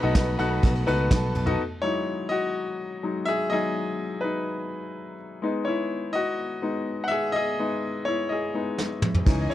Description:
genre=piano-driven pop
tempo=125 BPM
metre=4/4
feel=straight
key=E major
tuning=A4 = 441 Hz
part: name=dark studio violin section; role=second line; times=0.0-1.6, 9.3-9.5 s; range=G#4 to B5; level=-37 LUFS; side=right 5 dB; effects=none
part: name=clear baby grand piano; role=accompaniment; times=0.0-9.5 s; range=B2 to F#5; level=-26 LUFS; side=left 2 dB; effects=none
part: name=warm studio string section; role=sustained chords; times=0.0-1.6, 9.3-9.5 s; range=C#3 to D#5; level=-40 LUFS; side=right 6 dB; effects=none
part: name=picked electric bass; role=bass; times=0.0-1.6, 9.3-9.5 s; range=B1 to C#2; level=-26 LUFS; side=right 1 dB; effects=none
part: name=vintage brush drum kit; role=drums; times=0.1-1.6, 8.8-9.5 s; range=kick drum, ride cymbal, snare drum, toms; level=-24 LUFS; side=right 1 dB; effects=none
room=little or no reverb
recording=none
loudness=-24 LUFS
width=side -13 dB against mid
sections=0.0-1.6 A section; 1.6-9.5 A section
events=grand piano solo 1.6-9.5; drum fill 8.8-9.3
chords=0.0 B7; 1.6 Emaj7; 5.4 G#m

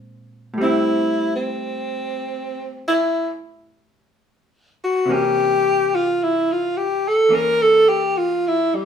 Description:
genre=jazz ballad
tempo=54 BPM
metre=4/4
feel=swing 68% on 8ths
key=unclear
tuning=A4 = 440 Hz
part: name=vintage hollow-body jazz guitar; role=accompaniment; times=0.0-8.8 s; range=A2 to E4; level=-26 LUFS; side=equal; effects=none
part: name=breathy tenor saxophone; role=melody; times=0.6-8.8 s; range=G3 to Bb4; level=-17 LUFS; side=equal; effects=none
room=wet studio reverb, RT60 0.9 s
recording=band playing live in one room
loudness=-17 LUFS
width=side -8 dB against mid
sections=0.0-8.8 A section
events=tenor saxophone solo 0.0-8.8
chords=0.0 Bb9; 0.6 Am7; 5.1 C7b9

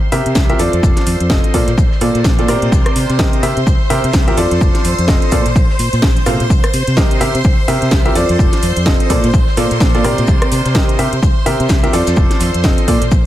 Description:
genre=piano house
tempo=127 BPM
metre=4/4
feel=swing 58% on 16ths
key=unclear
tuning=A4 = 439 Hz
part: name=string machine, violins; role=sustained chords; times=0.0-13.3 s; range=C5 to C6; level=-22 LUFS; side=equal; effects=ensemble chorus, sidechain pumping
part: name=clear upright piano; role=riff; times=0.1-13.0 s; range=Bb2 to F5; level=-17 LUFS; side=right 1 dB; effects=sidechain pumping, dub echo
part: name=fingered electric bass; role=bass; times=0.1-13.2 s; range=F1 to C3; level=-18 LUFS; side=equal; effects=sidechain pumping
part: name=house drum kit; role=drums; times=0.1-13.1 s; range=hi-hat, rim click, snare drum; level=-21 LUFS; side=equal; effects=overdrive
part: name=oversized low-tuned drum kit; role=drums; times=0.1-13.2 s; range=hi-hat, shaker, snare drum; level=-31 LUFS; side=left 2 dB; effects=none
part: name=electronic kick drum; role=drums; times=0.4-13.2 s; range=none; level=-14 LUFS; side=equal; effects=overdrive
room=small room ambience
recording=none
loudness=-11 LUFS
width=side -13 dB against mid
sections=0.0-13.3 A section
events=none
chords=0.0 C7; 0.6 F7; 1.5 Bbmaj7; 2.7 Cm7; 3.4 C7; 4.4 F7; 5.3 Bbmaj7; 6.5 Cm7; 7.2 C7; 8.2 F7; 9.1 Bbmaj7; 10.3 Cm7; 11.0 C7; 11.9 F7

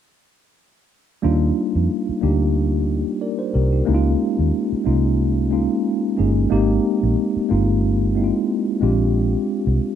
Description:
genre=R&B, neo-soul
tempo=91 BPM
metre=4/4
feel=swing 54% on 16ths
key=Eb major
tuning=A4 = 435 Hz
part: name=mellow tine electric piano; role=accompaniment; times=1.2-10.0 s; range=G3 to D5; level=-19 LUFS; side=equal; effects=medium stereo tremolo
part: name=vintage muted fingered electric bass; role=bass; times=1.2-9.8 s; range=G1 to F2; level=-20 LUFS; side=equal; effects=none
room=little or no reverb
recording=dry, close 1970s-style studio recording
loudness=-17 LUFS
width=side -9 dB against mid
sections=1.2-10.0 A section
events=none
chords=1.2 Ebmaj9; 3.9 Db69; 6.5 Abmaj9; 8.8 Bb13

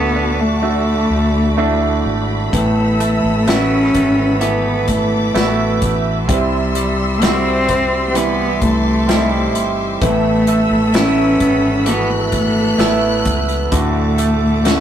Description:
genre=pop ballad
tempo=64 BPM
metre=4/4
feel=straight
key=unclear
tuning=A4 = 440 Hz
part: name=warm cello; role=melody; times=0.0-14.8 s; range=G3 to C#4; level=-17 LUFS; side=left 1 dB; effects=none
part: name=clear grand piano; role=accompaniment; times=0.0-14.8 s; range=A2 to A4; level=-21 LUFS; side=right 1 dB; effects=none
part: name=warm studio string section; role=sustained chords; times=0.0-14.8 s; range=G3 to F#6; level=-24 LUFS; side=left 2 dB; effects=none
part: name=direct-recorded clean electric guitar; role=arpeggios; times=0.0-14.8 s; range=C3 to F#4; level=-22 LUFS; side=right 6 dB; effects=none
part: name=mellow fretless electric bass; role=bass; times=0.0-14.8 s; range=G1 to D2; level=-22 LUFS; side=equal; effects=none
part: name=natural country drum kit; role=drums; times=2.5-14.8 s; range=hi-hat, kick drum, snare drum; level=-20 LUFS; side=left 1 dB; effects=none
room=moderate small room reverb, RT60 0.5 s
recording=rough rehearsal-room recording, tube saturation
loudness=-13 LUFS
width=side -10 dB against mid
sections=0.0-14.8 A section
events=none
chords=0.0 D; 6.3 C; 10.0 Asus2; 13.7 D

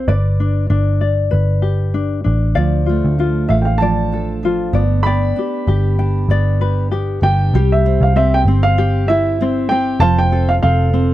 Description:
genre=acoustic pop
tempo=97 BPM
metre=4/4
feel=swing 55% on 16ths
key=C major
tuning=A4 = 439 Hz
part: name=dark upright piano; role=melody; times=0.0-11.1 s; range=D5 to B5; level=-19 LUFS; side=right 2 dB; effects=none
part: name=tenor ukulele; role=accompaniment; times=0.0-11.1 s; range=C4 to G5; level=-21 LUFS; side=left 6 dB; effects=none
part: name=vintage muted picked electric bass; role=bass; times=0.0-11.1 s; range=F1 to D2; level=-15 LUFS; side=equal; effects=none
part: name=fingerpicked steel-string acoustic guitar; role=arpeggios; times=2.6-11.1 s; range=F3 to A4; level=-23 LUFS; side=right 7 dB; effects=none
room=light reverb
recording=dry, close 1970s-style studio recording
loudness=-13 LUFS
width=side -14 dB against mid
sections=0.0-7.5 A section; 7.5-11.1 B section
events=none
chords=0.1 G; 2.6 Dm; 4.7 G; 7.5 C; 10.0 F

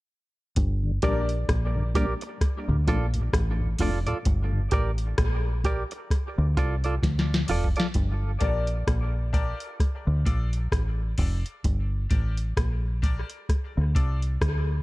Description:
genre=dub reggae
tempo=65 BPM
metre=4/4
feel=swing 58% on 16ths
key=unclear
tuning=A4 = 440 Hz
part: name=deep dub fingered electric bass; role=bass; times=0.6-14.8 s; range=F1 to D2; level=-25 LUFS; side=equal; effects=none
part: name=soft vintage rhythm box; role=drums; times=0.6-14.7 s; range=hi-hat, kick drum, rim click, snare drum, toms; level=-26 LUFS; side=equal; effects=overdrive
part: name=mellow tonewheel organ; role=accompaniment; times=0.8-4.6 s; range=D2 to D4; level=-33 LUFS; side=left 2 dB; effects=chorus vibrato, slow rotary speaker, high-pass filter, dub echo
part: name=semi-hollow electric guitar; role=accompaniment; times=1.0-7.9 s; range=F4 to D5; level=-33 LUFS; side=right 4 dB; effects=high-pass filter, dub echo
part: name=bright grand piano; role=stabs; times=1.0-1.3, 8.4-14.2 s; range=D4 to D5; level=-35 LUFS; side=left 3 dB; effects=high-pass filter, dub echo
room=little or no reverb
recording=echo-heavy mix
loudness=-23 LUFS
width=side -19 dB against mid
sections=0.6-7.9 A section; 7.9-14.8 B section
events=filter sweep 4.3-14.8; drum fill 7.0-7.9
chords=0.6 Gm; 2.4 Dm; 4.3 Gm; 6.1 Dm; 7.9 Gm; 9.8 Dm; 11.6 Gm; 13.5 Dm

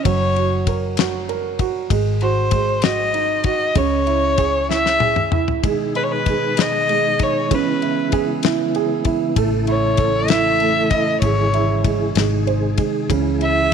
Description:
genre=six-eight pop ballad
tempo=64 BPM (dotted quarters)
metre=6/8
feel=straight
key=C# minor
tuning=A4 = 440 Hz
part: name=dark violin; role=melody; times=0.0-13.7 s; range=B4 to E5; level=-20 LUFS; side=left 2 dB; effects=none
part: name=warm baby grand piano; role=accompaniment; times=0.0-13.7 s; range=C#3 to B#4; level=-22 LUFS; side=right 13 dB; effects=none
part: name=vintage muted fingered electric bass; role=bass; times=0.1-13.7 s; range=F#1 to C#2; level=-23 LUFS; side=left 1 dB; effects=none
part: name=damped 70s drum kit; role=drums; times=0.1-13.6 s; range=kick drum, ride cymbal, snare drum, toms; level=-22 LUFS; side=left 5 dB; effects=none
part: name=mellow tonewheel organ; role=sustained chords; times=5.6-13.7 s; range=B2 to A4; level=-23 LUFS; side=equal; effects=chorus vibrato, fast rotary speaker
room=light reverb, studio reverb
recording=1960s-style stereo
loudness=-16 LUFS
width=side -7 dB against mid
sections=0.0-13.7 A section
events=drum fill 4.7-5.6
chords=0.1 F#; 1.9 G#7; 3.8 C#m; 5.6 G#m; 7.5 C#m7; 9.4 A; 11.2 C#m/G#; 12.2 G#; 13.1 C#m

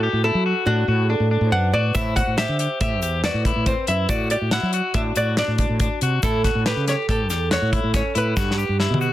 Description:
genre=progressive instrumental, band music in an uneven meter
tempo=140 BPM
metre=5/4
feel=straight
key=A dorian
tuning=A4 = 441 Hz
part: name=archtop guitar, miked and amplified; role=melody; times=0.0-9.1 s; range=F#4 to F#5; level=-25 LUFS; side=equal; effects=tape echo
part: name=vibraphone with soft mallets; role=second line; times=0.0-9.1 s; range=F#4 to C5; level=-30 LUFS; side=right 4 dB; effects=none
part: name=clean electric guitar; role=arpeggios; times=0.0-9.1 s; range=C4 to G4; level=-26 LUFS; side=left 5 dB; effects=none
part: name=fretless electric bass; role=bass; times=0.0-9.1 s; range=E2 to F#3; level=-22 LUFS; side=equal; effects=none
part: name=damped 70s drum kit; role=drums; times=2.0-9.0 s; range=hi-hat, kick drum, snare drum, toms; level=-24 LUFS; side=equal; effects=none
part: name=egg shaker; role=percussion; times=2.0-9.1 s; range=none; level=-39 LUFS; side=right 9 dB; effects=none
room=light reverb, small room ambience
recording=dense, heavily limited modern master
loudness=-18 LUFS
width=side -14 dB against mid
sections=0.0-9.1 A section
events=drum fill 8.4-9.1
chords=0.0 D/A; 2.0 Amadd9; 4.1 D/A; 6.2 A7; 8.4 G

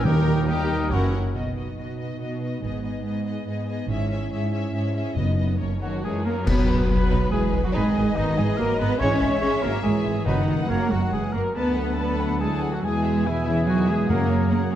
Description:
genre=cinematic, heroic adventure film score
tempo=141 BPM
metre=3/4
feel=straight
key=B major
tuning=A4 = 440 Hz
part: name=rich symphonic violin section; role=melody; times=0.0-14.8 s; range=B4 to A5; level=-34 LUFS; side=left 4 dB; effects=none
part: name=clear clarinet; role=second line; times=0.0-1.1 s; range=D#4 to E4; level=-38 LUFS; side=left 2 dB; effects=none
part: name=mellow hollow silver concert flute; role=second line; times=0.0-1.1, 5.8-14.8 s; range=D#5 to D#6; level=-34 LUFS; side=left 2 dB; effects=none
part: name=warm oboe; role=second line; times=0.0-1.1, 5.8-14.8 s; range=C#4 to C#5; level=-35 LUFS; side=equal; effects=none
part: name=clear symphonic viola section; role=accompaniment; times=0.0-14.8 s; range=B3 to C#5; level=-33 LUFS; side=left 1 dB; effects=none
part: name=mellow French horn section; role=sustained chords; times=0.0-14.8 s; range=B2 to E4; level=-31 LUFS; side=left 3 dB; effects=none
part: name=warm trombone section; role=sustained chords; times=0.0-1.1, 6.5-14.8 s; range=A#2 to G#3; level=-32 LUFS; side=right 2 dB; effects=none
part: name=clear trumpet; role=stabs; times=0.0-1.1, 6.5-14.8 s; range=F#4 to C#5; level=-35 LUFS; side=equal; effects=none
part: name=rich symphonic violin section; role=second line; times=0.1-14.8 s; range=G#3 to D5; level=-36 LUFS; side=left 2 dB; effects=none
part: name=rich studio double bass section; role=bass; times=0.1-14.8 s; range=F#1 to F#2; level=-28 LUFS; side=right 2 dB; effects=none
part: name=warm symphonic cello section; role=bass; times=0.1-14.8 s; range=D#2 to C#4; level=-25 LUFS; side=right 2 dB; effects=none
part: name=timpani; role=percussion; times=0.1-2.0, 5.2-7.1, 10.3-10.7, 14.1-14.7 s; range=F#2 to D#3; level=-27 LUFS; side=left 1 dB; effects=none
part: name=cymbal swell, clash cymbals and concert bass drum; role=percussion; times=3.9-7.3 s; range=none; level=-26 LUFS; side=left 1 dB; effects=none
room=moderate scoring stage reverb, RT60 1.8 s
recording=dark, warm production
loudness=-21 LUFS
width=side -11 dB against mid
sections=0.0-1.4 A section; 1.4-6.5 B section; 6.5-14.8 C section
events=band accent 6.5-6.9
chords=0.1 D#; 0.9 F#7; 1.4 B; 2.6 G#m; 3.9 C#m/G#; 5.2 B/F#; 5.6 F#; 6.5 B; 7.7 G#m; 9.0 C#m/G#; 10.3 B/F#; 10.7 F#; 11.6 D; 12.8 E; 14.1 F#

